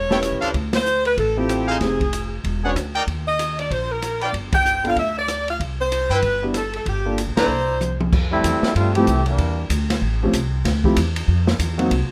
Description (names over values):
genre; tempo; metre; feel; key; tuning
jazz, big band swing; 190 BPM; 4/4; swing 61% on 8ths; C major, F major from 8.1 s; A4 = 436 Hz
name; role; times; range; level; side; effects
warm saxophone section; melody; 0.0-8.0 s; G4 to G5; -24 LUFS; equal; none
upright bass; bass; 0.0-12.1 s; E1 to G2; -26 LUFS; equal; none
warm concert grand piano; accompaniment; 0.1-2.8, 4.8-11.9 s; F3 to B4; -24 LUFS; equal; none
brilliant trumpet section; stabs; 0.1-7.8 s; D4 to Bb5; -27 LUFS; equal; none
open jazz drum kit; drums; 0.1-12.0 s; crash cymbal, hi-hat, kick drum, ride cymbal, rim click, snare drum, toms; -28 LUFS; equal; none
brilliant trombone section; second line; 8.3-9.7 s; E3 to G4; -23 LUFS; equal; none
room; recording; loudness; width
light reverb; close, detailed microphones; -21 LUFS; mono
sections
0.0-8.1 A section; 8.1-12.1 B section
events
band accent 0.7, 4.5, 7.3; drum fill 7.8-8.1; trombone section solo 8.1-12.1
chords
0.0 A7; 0.5 Dm7; 1.8 Fm7; 2.4 E13; 3.1 Eb5; 4.3 G5; 5.6 Cmaj7; 6.9 Gm7; 7.5 C9; 8.1 Fmaj9; 9.4 Em7b5; 10.0 A7alt; 10.7 Dm9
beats
0.23 | 0.54 0.86 1.17 1.49 | 1.81 2.12 2.44 2.75 | 3.07 3.39 3.70 4.02 | 4.33 4.65 4.97 5.28 | 5.60 5.91 6.23 6.55 | 6.86 7.18 7.50 7.81 | 8.13 8.44 8.76 9.07 | 9.39 9.70 10.02 10.33 | 10.65 10.96 11.28 11.60 | 11.91